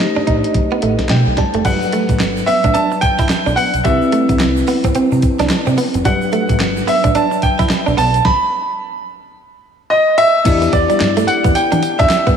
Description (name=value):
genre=R&B, new jack swing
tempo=109 BPM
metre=4/4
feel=swing 61% on 16ths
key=E minor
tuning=A4 = 441 Hz
part: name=clear baby grand piano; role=melody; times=0.0-12.4 s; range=D5 to B5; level=-16 LUFS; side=right 1 dB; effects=slapback echo, tape echo
part: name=bell-like tine electric piano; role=accompaniment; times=0.0-12.4 s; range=F#3 to A5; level=-19 LUFS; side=left 3 dB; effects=slapback echo
part: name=direct-recorded clean electric guitar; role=riff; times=0.0-12.3 s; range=G3 to E4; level=-20 LUFS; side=right 5 dB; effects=analog chorus, slapback echo
part: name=clean 12-bit digital drum machine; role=drums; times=0.0-12.4 s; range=crash cymbal, handclaps, hi-hat, kick drum, snare drum, tambourine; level=-18 LUFS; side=equal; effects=none
part: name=deep dub fingered electric bass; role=bass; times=0.2-12.4 s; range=F#1 to E3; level=-19 LUFS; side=right 1 dB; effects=none
part: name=egg shaker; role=percussion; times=1.7-12.4 s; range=none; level=-39 LUFS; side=right 8 dB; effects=none
room=moderate lush hall reverb, RT60 2.1 s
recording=big arena sound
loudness=-12 LUFS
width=side -7 dB against mid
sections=0.0-1.6 A section; 1.6-10.5 B section; 10.5-12.4 C section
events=tine electric piano fill 0.8-1.6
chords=0.0 B7b9b13; 1.6 Gmaj7; 3.9 Cmaj7; 6.1 Gmaj7; 8.0 N.C.; 10.5 Em7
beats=0.00 0.55 1.10 | 1.65 2.20 2.75 3.30 | 3.85 4.40 4.95 5.50 | 6.05 6.60 7.15 7.70 | 8.25 8.80 9.36 9.90 | 10.46 11.01 11.56 12.11